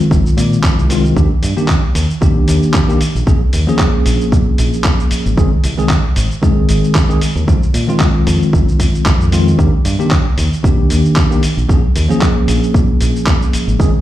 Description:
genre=nu-disco, nu disco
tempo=114 BPM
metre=4/4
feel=swing 54% on 16ths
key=unclear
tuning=A4 = 441 Hz
part: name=bell-like tine electric piano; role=accompaniment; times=0.0-13.9 s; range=Eb3 to Ab4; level=-16 LUFS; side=left 1 dB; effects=fast stereo tremolo, sidechain pumping, slapback echo
part: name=dusty soul sampler-style drum kit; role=drums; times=0.0-13.9 s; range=cabasa, handclaps, hi-hat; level=-22 LUFS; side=equal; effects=overdrive
part: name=fingered electric bass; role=bass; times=0.1-13.9 s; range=F1 to Bb2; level=-16 LUFS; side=equal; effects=tube saturation, sidechain pumping
part: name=electronic kick drum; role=drums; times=0.1-13.9 s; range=none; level=-12 LUFS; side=equal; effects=none
room=digital ambience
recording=played on a big sound system in a bare room, large studio reverb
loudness=-11 LUFS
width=side -13 dB against mid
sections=0.0-14.0 A section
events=none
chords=0.0 Fm7; 1.2 Ebmaj7; 3.0 Bbm7; 5.4 Ab; 7.5 Fm7; 9.6 Ebmaj7; 11.4 Bbm7

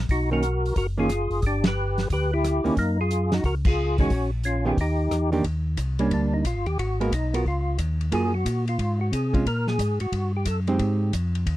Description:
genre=soul jazz organ trio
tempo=179 BPM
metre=4/4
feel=swing 64% on 8ths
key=unclear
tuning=A4 = 441 Hz
part: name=mellow tonewheel organ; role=bass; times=0.0-11.6 s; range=F#1 to C3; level=-25 LUFS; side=equal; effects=chorus vibrato, slow rotary speaker
part: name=percussive tonewheel organ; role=melody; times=0.1-10.6 s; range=Bb3 to B4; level=-27 LUFS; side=left 1 dB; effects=chorus vibrato, slow rotary speaker
part: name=warm soul drum kit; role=drums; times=0.1-11.6 s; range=crash cymbal, hi-hat, kick drum, ride cymbal, rim click, snare drum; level=-27 LUFS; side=equal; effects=none
part: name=hollow-body jazz guitar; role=accompaniment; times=0.3-11.1 s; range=D#3 to Bb4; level=-24 LUFS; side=right 3 dB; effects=none
room=little or no reverb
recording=none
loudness=-22 LUFS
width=side -15 dB against mid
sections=0.0-5.4 A section; 5.4-11.6 B section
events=band accent 1.6, 3.6; tonewheel organ solo 5.4-11.6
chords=0.1 Bmaj9; 1.4 G; 2.8 Gb6; 4.1 Bbmadd11; 4.8 Eb; 5.4 Ebmaj7; 6.8 Abm9; 7.5 Dbadd9; 8.1 Gbmaj9; 9.5 Gbadd9; 10.1 F#dim7; 10.8 Abmaj7

